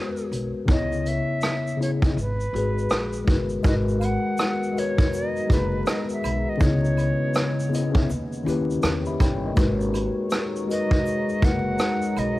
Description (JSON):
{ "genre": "lo-fi hip hop", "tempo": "81 BPM", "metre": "4/4", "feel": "swing 61% on 16ths", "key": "G# minor", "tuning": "A4 = 440 Hz", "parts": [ { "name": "silver concert flute", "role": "melody", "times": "0.0-12.4 s", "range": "B4 to F#5", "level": "-30 LUFS", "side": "right 1 dB", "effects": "low-pass filter, cassette tape" }, { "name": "mellow tine electric piano", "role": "accompaniment", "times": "0.0-12.4 s", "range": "C#3 to B5", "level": "-26 LUFS", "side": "left 3 dB", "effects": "medium stereo tremolo, cassette tape, low-pass filter" }, { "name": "vintage brush drum kit", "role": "drums", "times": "0.2-12.4 s", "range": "hi-hat, kick drum, rim click, shaker", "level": "-23 LUFS", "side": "equal", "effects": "none" }, { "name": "upright bass", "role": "bass", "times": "0.3-12.4 s", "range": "F#1 to E2", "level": "-28 LUFS", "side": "equal", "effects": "none" }, { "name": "deep dark ambient pad", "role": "sustained chords", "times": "4.4-12.4 s", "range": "D#3 to A#5", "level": "-33 LUFS", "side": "equal", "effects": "chorus, built-in reverb, low-pass filter, cassette tape" }, { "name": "egg shaker and woodblock", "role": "percussion", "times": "3.6-12.4 s", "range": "none", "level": "-42 LUFS", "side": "right 8 dB", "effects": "none" } ], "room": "studio ambience", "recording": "home recording on cassette, vinyl crackle", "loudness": "-21 LUFS", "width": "side -17 dB against mid", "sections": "0.0-3.6 A section; 3.6-12.4 B section", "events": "none", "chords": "0.0 G#m9; 0.7 C#m9; 2.2 G#m9; 6.6 C#m9; 8.1 D#7b9b13; 9.6 G#m9" }